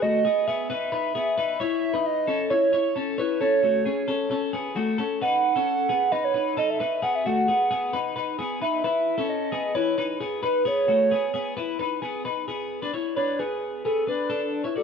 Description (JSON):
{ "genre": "indie pop", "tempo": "132 BPM", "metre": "4/4", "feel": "straight", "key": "E major", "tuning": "A4 = 440 Hz", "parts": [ { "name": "hollow clarinet-like synth lead", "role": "melody", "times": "0.0-14.8 s", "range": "A4 to F#5", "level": "-24 LUFS", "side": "right 3 dB", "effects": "chorus, phaser" }, { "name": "twelve-string electric guitar", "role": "arpeggios", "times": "0.0-14.8 s", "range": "A3 to D5", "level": "-26 LUFS", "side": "left 5 dB", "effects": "none" } ], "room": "moderate echo chamber reverb, RT60 1.7 s", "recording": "none", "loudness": "-22 LUFS", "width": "side -6 dB against mid", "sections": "0.0-12.5 A section; 12.5-14.8 B section", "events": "none", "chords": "0.0 Emaj7; 1.6 A; 5.2 B; 8.8 C#m7; 10.7 E6; 12.5 E; 14.1 Bm" }